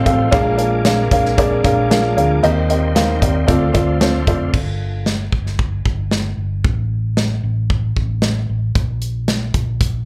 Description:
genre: piano-driven pop.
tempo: 114 BPM.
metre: 4/4.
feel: straight.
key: unclear.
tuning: A4 = 439 Hz.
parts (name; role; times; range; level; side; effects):
dark upright piano; accompaniment; 0.0-4.6 s; A2 to F5; -19 LUFS; equal; slapback echo.
tonewheel organ; sustained chords; 0.0-4.5 s; A4 to D6; -32 LUFS; equal; chorus vibrato, fast rotary speaker.
fingerpicked plugged-in steel-string acoustic guitar; riff; 0.0-5.0 s; A2 to C5; -26 LUFS; equal; none.
hollow-body short-scale fingered electric bass; bass; 0.0-10.0 s; F1 to Eb2; -22 LUFS; equal; none.
modern studio drum kit; drums; 0.1-9.9 s; crash cymbal, hi-hat, kick drum, snare drum; -21 LUFS; equal; none.
room: light reverb.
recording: live gig heard through the venue's PA, club reverb.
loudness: -17 LUFS.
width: mono.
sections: 0.0-4.5 A section; 4.5-10.1 B section.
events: none.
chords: 0.3 Bb7; 2.4 Eb6; 3.5 Dm7; 4.5 N.C..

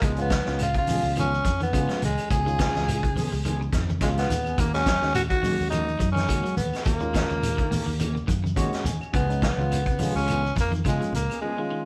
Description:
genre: afrobeat.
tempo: 105 BPM.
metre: 4/4.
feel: swing 55% on 16ths.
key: unclear.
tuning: A4 = 440 Hz.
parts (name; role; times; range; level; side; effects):
growling tenor saxophone; melody; 0.0-11.8 s; Ab3 to Ab4; -30 LUFS; equal; none.
barky tine electric piano; accompaniment; 0.0-11.9 s; Ab3 to Ab5; -35 LUFS; equal; none.
electric guitar at the edge of break-up; arpeggios; 0.0-11.8 s; Db3 to Bb3; -38 LUFS; equal; none.
mellow electric guitar; stabs; 0.0-11.8 s; F3 to Ab4; -38 LUFS; equal; none.
fingered electric bass; bass; 0.0-11.3 s; Db2 to Eb3; -31 LUFS; equal; none.
vintage drum kit; drums; 0.0-11.4 s; hi-hat, kick drum, snare drum; -31 LUFS; equal; none.
shekere; percussion; 0.0-11.4 s; none; -40 LUFS; equal; none.
claves; percussion; 0.3-11.4 s; none; -48 LUFS; equal; none.
congas; percussion; 0.3-11.3 s; none; -35 LUFS; equal; none.
room: moderate studio reverb, RT60 0.9 s.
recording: band playing live in one room.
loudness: -25 LUFS.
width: mono.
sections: 0.0-11.9 A section.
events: tine electric piano fill 8.3-9.1.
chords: 0.0 Db7; 4.6 Ebm7; 9.1 Db7.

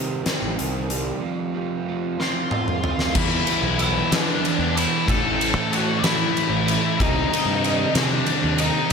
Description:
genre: quiet-loud alternative rock.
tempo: 62 BPM (dotted quarters).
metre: 6/8.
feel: straight.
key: unclear.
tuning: A4 = 440 Hz.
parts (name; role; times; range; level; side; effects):
electric guitar through a small old amp; arpeggios; 0.0-3.2 s; F2 to C4; -32 LUFS; left 1 dB; analog chorus, slapback echo, tape echo.
overdriven semi-hollow guitar; riff; 0.0-8.9 s; A2 to G4; -27 LUFS; right 8 dB; none.
fuzz picked electric bass; bass; 0.0-8.7 s; A1 to E3; -27 LUFS; left 1 dB; overdrive.
huge arena drum kit; drums; 0.3-8.9 s; crash cymbal, hi-hat, kick drum, ride cymbal, snare drum, toms; -24 LUFS; equal; none.
octave-fuzz lead guitar; melody; 2.2-8.9 s; D4 to A5; -24 LUFS; left 2 dB; distortion.
scooped high-gain guitar; riff; 3.2-8.9 s; E2 to C4; -26 LUFS; left 12 dB; distortion.
room: moderate lush hall reverb, RT60 2.9 s.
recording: big arena sound.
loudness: -19 LUFS.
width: side -5 dB against mid.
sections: 0.0-3.2 A section; 3.2-8.9 B section.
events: drum fill 2.2-3.2.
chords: 0.0 Cm; 1.2 F; 3.2 Em; 5.1 A; 7.0 Cm.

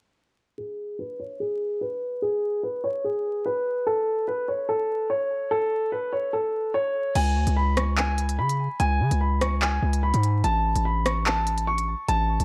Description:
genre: hip hop, drill.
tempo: 146 BPM.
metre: 4/4.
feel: half-time.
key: unclear.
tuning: A4 = 439 Hz.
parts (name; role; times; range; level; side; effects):
dark baby grand piano; melody; 0.6-12.4 s; G#4 to C#6; -28 LUFS; equal; low-pass filter.
distorted 808-style bass; bass; 7.2-12.4 s; A1 to C#3; -26 LUFS; equal; distortion.
drill drum kit; drums; 7.2-12.4 s; crash cymbal, handclaps, hi-hat, rim click; -31 LUFS; equal; none.
room: light reverb, digital ambience.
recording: dark, warm production, vinyl crackle.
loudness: -25 LUFS.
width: mono.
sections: 0.6-7.2 A section; 7.2-12.4 B section.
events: filter sweep on grand piano 0.6-7.2.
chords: 0.6 N.C.; 7.2 C#5; 10.4 A.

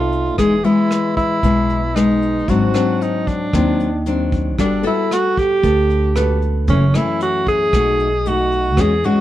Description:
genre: bossa nova.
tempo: 114 BPM.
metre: 4/4.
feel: straight.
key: E major.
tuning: A4 = 440 Hz.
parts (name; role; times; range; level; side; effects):
breathy alto saxophone; melody; 0.0-9.2 s; C#4 to G#4; -18 LUFS; right 1 dB; none.
nylon-string guitar; accompaniment; 0.0-9.2 s; F#2 to A4; -18 LUFS; left 3 dB; none.
warm baby grand piano; accompaniment; 0.0-0.5, 4.6-6.9 s; A4 to D5; -29 LUFS; right 3 dB; none.
upright bass; bass; 0.0-9.0 s; E1 to E2; -19 LUFS; right 1 dB; none.
vintage brush drum kit; drums; 0.1-9.2 s; hi-hat, kick drum, rim click; -24 LUFS; right 1 dB; none.
room: light reverb.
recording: dark, warm production.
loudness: -14 LUFS.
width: side -13 dB against mid.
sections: 0.0-9.2 A section.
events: none.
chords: 0.4 Emaj7; 2.5 G#7#11; 4.6 Gmaj9; 6.7 F#m7; 7.7 B7.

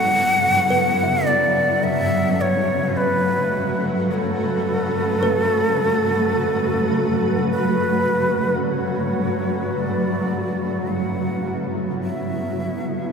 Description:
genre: ambient.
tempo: 53 BPM.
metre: 4/4.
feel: straight.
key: unclear.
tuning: A4 = 440 Hz.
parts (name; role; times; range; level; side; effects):
breathy shakuhachi; melody; 0.0-13.1 s; A4 to F#5; -21 LUFS; equal; ping-pong delay.
shimmering ambient pad; sustained chords; 0.0-13.1 s; G2 to B4; -21 LUFS; equal; chorus, built-in reverb.
kalimba; arpeggios; 0.0-7.6 s; A4 to C#6; -29 LUFS; equal; ping-pong delay.
room: wet cathedral reverb, RT60 5.5 s.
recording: none.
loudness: -18 LUFS.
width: side -6 dB against mid.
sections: 0.0-8.6 A section; 8.6-13.1 B section.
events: fade-in on shakuhachi 8.6-13.1.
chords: 0.0 Aadd9/G.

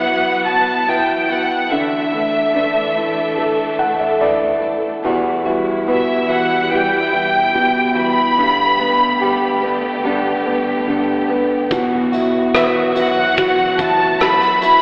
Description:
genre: pop ballad.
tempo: 72 BPM.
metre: 4/4.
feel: straight.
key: E minor.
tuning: A4 = 440 Hz.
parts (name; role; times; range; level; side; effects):
warm studio violin section; melody; 0.0-14.8 s; E5 to B5; -19 LUFS; equal; none.
warm grand piano; accompaniment; 0.0-14.8 s; E2 to F#5; -22 LUFS; equal; none.
warm studio string section; sustained chords; 0.0-14.8 s; D3 to B4; -26 LUFS; equal; none.
nylon-string guitar; arpeggios; 0.0-14.8 s; E2 to A4; -25 LUFS; equal; none.
huge arena drum kit; drums; 11.7-14.8 s; hi-hat, kick drum, rim click; -25 LUFS; equal; none.
room: wet church reverb, RT60 3.1 s.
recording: recorded in a church or concert hall, telephone sound.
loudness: -16 LUFS.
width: mono.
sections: 0.0-5.0 A section; 5.0-14.8 B section.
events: grand piano fill 3.4-5.0.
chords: 0.0 Bsus4; 1.7 Dsus2; 5.0 Emadd9; 8.4 Gadd9; 11.7 Bsus4.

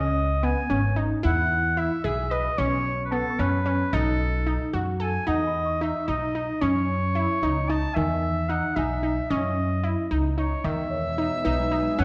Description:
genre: contemporary instrumental, chamber music in an uneven meter.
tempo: 223 BPM (eighths).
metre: 5/8.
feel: straight.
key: unclear.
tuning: A4 = 440 Hz.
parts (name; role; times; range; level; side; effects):
warm oboe; melody; 0.0-12.0 s; A4 to A5; -30 LUFS; equal; none.
analog pluck; arpeggios; 0.0-12.0 s; D#3 to B4; -30 LUFS; equal; chorus.
upright bass; bass; 0.0-12.0 s; G#1 to F#2; -29 LUFS; equal; none.
small celesta; texture; 3.1-12.0 s; B4 to C#6; -40 LUFS; equal; none.
soft additive organ-like pad; sustained chords; 10.9-12.0 s; A2 to E5; -36 LUFS; equal; ensemble chorus, built-in reverb.
room: wet recital hall reverb, RT60 1.4 s.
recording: dark, warm production.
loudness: -25 LUFS.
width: mono.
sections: 0.0-5.3 A section; 5.3-12.0 B section.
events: none.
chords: 0.0 C#sus2; 1.2 E; 2.6 B7; 5.3 E5; 6.6 F#5; 8.0 Emaj7; 9.3 F#sus2; 10.6 Emaj7.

